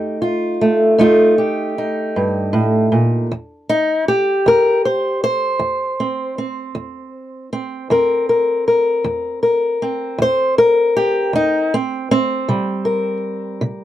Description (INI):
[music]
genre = acoustic country blues, solo or duo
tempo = 52 BPM (dotted quarters)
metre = 12/8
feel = straight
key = C mixolydian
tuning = A4 = 441 Hz
[part]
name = fingerpicked old ladder-braced acoustic guitar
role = solo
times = 0.0-13.8 s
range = E2 to C5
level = -15 LUFS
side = equal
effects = none
[sound]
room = light reverb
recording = dry, close 1970s-style studio recording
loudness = -14 LUFS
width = side -12 dB against mid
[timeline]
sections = 0.0-13.8 A section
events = none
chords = 0.0 F7; 3.3 C7